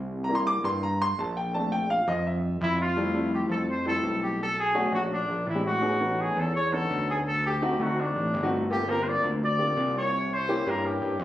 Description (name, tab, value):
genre	Afro-Cuban jazz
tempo	168 BPM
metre	4/4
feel	straight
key	F major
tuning	A4 = 441 Hz
part	fat analog bass	bass	0.0-11.2 s	G1 to G2	-30 LUFS	equal	none
part	warm concert grand piano	accompaniment	0.2-11.1 s	G3 to D6	-28 LUFS	left 1 dB	none
part	mellow trumpet	melody	2.6-11.2 s	D4 to D5	-27 LUFS	equal	none
room	light reverb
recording	recorded on a phone in the room, studio reverb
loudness	-24 LUFS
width	side -13 dB against mid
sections	0.0-3.0 A section; 3.0-11.2 B section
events	grand piano solo 0.0-3.0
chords	0.1 C7; 1.5 Bbmaj7; 3.0 Fmaj9; 4.4 Bm7; 5.1 Bb13; 5.8 Aadd9(#11); 7.3 D7b9; 8.7 Gm11; 10.1 C7b9